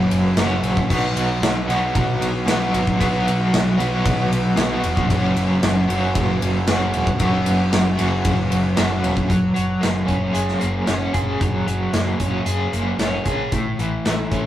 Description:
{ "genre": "classic rock", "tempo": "114 BPM", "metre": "4/4", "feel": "straight", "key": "unclear", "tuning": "A4 = 440 Hz", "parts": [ { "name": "overdriven semi-hollow guitar", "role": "riff", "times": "0.0-14.5 s", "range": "F#2 to G#4", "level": "-20 LUFS", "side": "equal", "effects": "tremolo" }, { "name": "overdriven picked electric bass", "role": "bass", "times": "0.0-14.5 s", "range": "E1 to F#2", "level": "-26 LUFS", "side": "equal", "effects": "none" }, { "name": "big rock drum kit", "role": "drums", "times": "0.1-14.4 s", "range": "crash cymbal, hi-hat, kick drum, ride cymbal, snare drum", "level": "-23 LUFS", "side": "equal", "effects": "none" } ], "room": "moderate studio ambience, RT60 0.5 s", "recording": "rough rehearsal-room recording", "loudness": "-17 LUFS", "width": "side -12 dB against mid", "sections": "0.0-9.3 A section; 9.3-14.5 B section", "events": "none", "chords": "0.0 F#; 0.9 B; 5.1 F#; 9.3 F#add9; 13.5 A" }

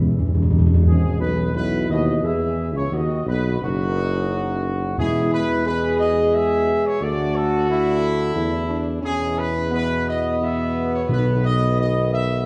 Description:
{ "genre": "classical, ceremonial fanfare", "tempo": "88 BPM", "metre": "3/4", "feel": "straight", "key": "E major", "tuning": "A4 = 440 Hz", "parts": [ { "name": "dark trumpet section", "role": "melody", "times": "0.0-12.4 s", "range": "E4 to E5", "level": "-28 LUFS", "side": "equal", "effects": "none" }, { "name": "dark trombone section", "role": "sustained chords", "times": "0.0-12.4 s", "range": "F#2 to A3", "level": "-32 LUFS", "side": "equal", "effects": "none" }, { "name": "warm French horn section", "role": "sustained chords", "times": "0.0-12.5 s", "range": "E3 to G#4", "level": "-26 LUFS", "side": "equal", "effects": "none" }, { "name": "mellow tuba", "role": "bass", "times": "0.0-12.5 s", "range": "F#1 to E2", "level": "-26 LUFS", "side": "equal", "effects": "none" }, { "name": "timpani", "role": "percussion", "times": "0.0-5.9, 11.1-12.1 s", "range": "E2 to B2", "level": "-22 LUFS", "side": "equal", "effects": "none" } ], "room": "wet scoring stage reverb, RT60 1.7 s", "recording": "dark, warm production", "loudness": "-21 LUFS", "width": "mono", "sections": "0.9-12.5 A section", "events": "timpani fill 0.0-0.9", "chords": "0.0 E; 0.9 E/G#; 2.9 B; 5.0 E; 7.0 Dsus2; 9.0 E5; 11.1 B" }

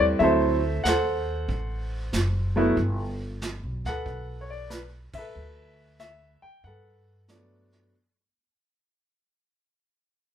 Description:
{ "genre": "jazz piano trio", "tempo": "93 BPM", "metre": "4/4", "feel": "swing 67% on 8ths", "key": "G major", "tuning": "A4 = 440 Hz", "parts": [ { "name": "warm concert grand piano", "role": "melody", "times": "0.0-7.9 s", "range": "F#3 to G5", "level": "-24 LUFS", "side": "equal", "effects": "none" }, { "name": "upright bass", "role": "bass", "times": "0.0-7.9 s", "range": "F#1 to G2", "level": "-30 LUFS", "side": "equal", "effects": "none" }, { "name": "vintage brush drum kit", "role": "drums", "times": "0.2-8.4 s", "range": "brushed snare drum, hi-hat, kick drum, ride cymbal, snare drum", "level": "-34 LUFS", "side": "right 3 dB", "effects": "none" } ], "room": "moderate large studio reverb, RT60 0.9 s", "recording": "band playing live in one room", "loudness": "-23 LUFS", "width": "side -9 dB against mid", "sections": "0.0-7.9 A section", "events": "fade-out 0.0-7.9; band accent 5.0-5.3", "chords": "0.2 D9; 2.8 Gmaj9" }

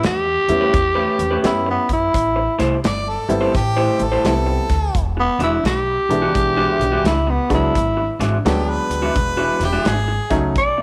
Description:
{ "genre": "electric blues shuffle", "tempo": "86 BPM", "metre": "4/4", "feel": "swing 64% on 8ths", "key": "unclear", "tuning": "A4 = 440 Hz", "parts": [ { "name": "growling tenor saxophone", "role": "melody", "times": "0.0-10.8 s", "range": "B3 to D5", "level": "-21 LUFS", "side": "equal", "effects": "none" }, { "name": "electric guitar through a small old amp", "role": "riff", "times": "0.0-10.8 s", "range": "E3 to C5", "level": "-25 LUFS", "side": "equal", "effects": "none" }, { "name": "upright bass", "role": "bass", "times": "0.0-10.8 s", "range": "E1 to F#2", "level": "-25 LUFS", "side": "equal", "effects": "none" }, { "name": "natural country drum kit", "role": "drums", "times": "0.0-10.8 s", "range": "hi-hat, kick drum, snare drum", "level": "-25 LUFS", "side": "equal", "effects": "none" }, { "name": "warm upright piano", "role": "accompaniment", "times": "0.5-10.5 s", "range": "E3 to G4", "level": "-25 LUFS", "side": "equal", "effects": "none" }, { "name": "bright harmonica", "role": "second line", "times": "2.9-10.4 s", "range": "G4 to D5", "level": "-26 LUFS", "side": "equal", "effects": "overdrive" } ], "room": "light reverb, studio ambience", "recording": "none", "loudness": "-18 LUFS", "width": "mono", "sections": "0.0-10.8 A section", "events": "none", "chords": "0.0 A9; 2.1 Am7; 4.9 E9" }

